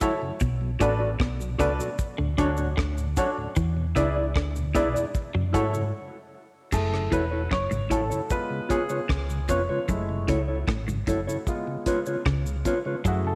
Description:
roots reggae; 76 BPM; 4/4; straight; F# minor; A4 = 438 Hz
mellow electric guitar; accompaniment; 0.0-13.0 s; D4 to D5; -32 LUFS; equal; dub echo
mellow tonewheel organ; accompaniment; 0.0-13.3 s; D2 to F#4; -38 LUFS; equal; slow rotary speaker, dub echo
warm upright piano; stabs; 0.0-13.3 s; G#3 to D5; -33 LUFS; equal
deep reggae drum kit; drums; 0.0-13.2 s; crash cymbal, hi-hat, kick drum, rim click; -31 LUFS; equal
cabasa; percussion; 0.0-13.2 s; -48 LUFS; equal
clean electric guitar; riff; 0.4-13.3 s; E2 to G#3; -34 LUFS; equal
fingered electric bass; bass; 0.4-13.3 s; E1 to G#2; -30 LUFS; equal
moderate echo chamber reverb, RT60 1.8 s, small room reverb; -26 LUFS; mono
0.0-6.7 A section; 6.7-13.3 B section
break 5.9-6.7; upright piano solo 6.7-13.3
0.4 Bm7; 2.0 Dmaj7; 3.6 E7; 5.1 F#m7; 5.9 N.C.; 6.7 F#m7; 8.3 C#7; 9.9 F#m7; 11.5 C#7
| 0.41 1.20 1.99 2.78 | 3.57 4.36 5.15 5.94 | 6.73 7.52 8.31 9.10 | 9.89 10.68 11.47 12.26 | 13.05

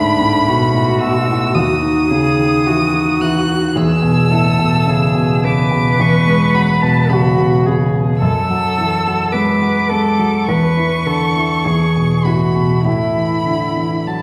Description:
classical, slow romantic movement for piano trio; 49-56 BPM; 4/4; rubato; A4 = 440 Hz
clear violin; melody; 0.0-14.2 s; A5 to F#6; -23 LUFS; equal
dark cello; second line; 0.0-14.2 s; D4 to B4; -21 LUFS; equal
warm concert grand piano; accompaniment; 0.0-14.2 s; D2 to G#3; -17 LUFS; equal
wet recital hall reverb, RT60 1.6 s; heard from further back in the room, vinyl crackle; -15 LUFS; mono
0.0-14.2 A section
0.0 Bm7/D; 1.6 D#madd11; 3.8 E; 8.2 D/F#; 10.5 A/E; 11.6 E; 12.8 A5
0.47 1.56 2.66 | 3.76 4.87 5.99 7.10 | 8.21 9.32 10.46 11.63 | 12.84 14.06

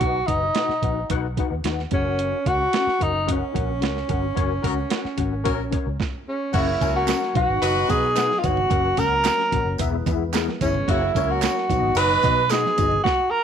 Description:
uptempo 1960s-style soul; 110 BPM; 4/4; straight; B major; A4 = 441 Hz
mellow tenor saxophone; melody; 0.0-13.4 s; C#4 to B4; -22 LUFS; right 2 dB; slapback echo
overdriven tine electric piano; accompaniment; 0.0-12.9 s; B2 to G#5; -28 LUFS; left 12 dB; ensemble chorus
vintage muted fingered electric bass; bass; 0.0-13.0 s; E1 to B2; -27 LUFS; equal
boom bap sampler-style drum kit; drums; 0.0-13.2 s; crash cymbal, hi-hat, kick drum, snare drum; -26 LUFS; right 3 dB
warm horn section; second line; 4.6-12.5 s; C#3 to B4; -27 LUFS; left 2 dB
percussive tonewheel organ; sustained chords; 6.5-13.0 s; E3 to D#4; -33 LUFS; equal; fast rotary speaker, overdrive, chorus vibrato
tambourine and handclaps; percussion; 6.5-12.9 s; -35 LUFS; right 14 dB
congas; percussion; 7.1-13.0 s; -37 LUFS; right 9 dB
light reverb, small room ambience; 1960s-style stereo with parts hard left and right; -19 LUFS; side -8 dB against mid
0.0-6.5 A section; 6.5-13.4 B section
band accent 4.4-6.5; stop 6.0-6.5
0.0 B; 1.9 F#; 7.4 B; 8.7 F#; 9.8 E; 10.9 F#; 11.7 B
| 0.01 0.56 1.10 1.65 | 2.19 2.73 3.28 3.82 | 4.36 4.91 5.45 5.99 | 6.54 7.08 7.62 8.17 | 8.71 9.25 9.80 10.34 | 10.88 11.43 11.97 12.51 | 13.05

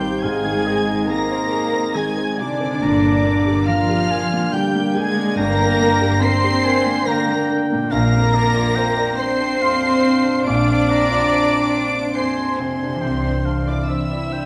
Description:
cinematic; 70 BPM; 3/4; rubato; A4 = 440 Hz
dark studio violin section; melody; 0.0-14.5 s; C6 to D7; -29 LUFS; equal
mellow large flute ensemble; second line; 0.0-14.5 s; C5 to D6; -30 LUFS; equal
warm oboe; second line; 0.0-14.5 s; C5 to Bb5; -30 LUFS; equal
warm studio violin section; second line; 0.0-14.5 s; C5 to D6; -32 LUFS; equal
dark studio viola section; accompaniment; 0.0-14.5 s; C4 to D5; -26 LUFS; equal
felt-muted upright piano; accompaniment; 0.0-14.5 s; Bb1 to D5; -28 LUFS; equal
dark French horn section; sustained chords; 0.0-14.5 s; Bb3 to Eb4; -27 LUFS; equal
concert harp; arpeggios; 0.0-14.5 s; Ab2 to C5; -31 LUFS; equal
warm studio cello section; bass; 0.0-14.5 s; C3 to D4; -26 LUFS; equal
warm studio double bass section; bass; 0.2-13.7 s; G1 to C2; -26 LUFS; equal
wet concert hall reverb, RT60 1.8 s; -18 LUFS; mono
0.0-14.5 A section
0.0 Ab; 2.8 Gm; 7.9 Bbadd9; 13.0 Cadd9
| 0.23 1.10 1.97 | 2.82 3.68 4.53 | 5.38 6.22 7.07 | 7.92 8.77 9.61 | 10.46 11.31 12.17 | 13.03 13.89

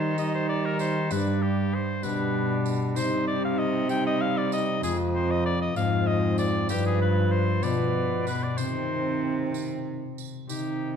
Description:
classical, renaissance-style consort dance; 64 BPM (dotted quarters); 6/8; straight; C minor; A4 = 440 Hz
clear oboe; melody; 0.0-10.9 s; G4 to G5; -30 LUFS; left 3 dB
mellow tenor recorder; second line; 0.0-11.0 s; C4 to C5; -32 LUFS; right 10 dB
concert harp; accompaniment; 0.0-11.0 s; F2 to G4; -31 LUFS; left 7 dB
dark trombone; accompaniment; 0.0-11.0 s; Eb3 to G3; -31 LUFS; equal
rich cello; bass; 0.0-11.0 s; F2 to Eb3; -29 LUFS; right 1 dB
tambourine; percussion; 0.2-10.8 s; -43 LUFS; right 11 dB
wet recital hall reverb, RT60 1.3 s; dark, warm production; -24 LUFS; side -7 dB against mid
0.0-10.5 A section
0.0 Eb6; 1.1 G; 3.0 Cm; 4.8 Fm; 6.7 G7; 8.6 Cm
0.18 | 1.11 2.04 | 2.96 3.89 | 4.83 5.76 | 6.70 7.64 | 8.58 9.54 | 10.48

